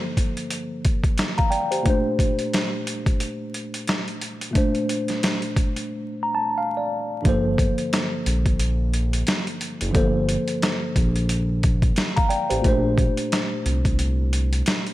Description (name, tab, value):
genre	hip hop, boom-bap hip-hop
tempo	89 BPM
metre	4/4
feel	swing 59% on 16ths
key	G minor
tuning	A4 = 438 Hz
part	tine electric piano	accompaniment	0.0-14.9 s	G2 to Bb5	-25 LUFS	equal	medium stereo tremolo, high-pass filter, low-pass filter
part	boom bap sampler-style drum kit	drums	0.2-14.9 s	hi-hat, kick drum, snare drum	-22 LUFS	equal	overdrive
part	smooth synth bass	bass	7.3-14.6 s	F#1 to C2	-22 LUFS	equal	none
room	light reverb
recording	vinyl crackle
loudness	-20 LUFS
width	side -16 dB against mid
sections	0.0-7.2 A section; 7.2-14.9 B section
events	filter sweep on tine electric piano 0.0-7.2; break 5.9-7.2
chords	0.0 Gm11; 1.9 Bbmaj9; 7.2 Gm11; 12.6 Bbmaj9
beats	0.51 1.18 | 1.86 2.53 3.20 3.88 | 4.55 5.23 5.90 6.58 | 7.25 7.92 8.60 9.27 | 9.95 10.62 11.29 11.97 | 12.64 13.32 13.99 14.66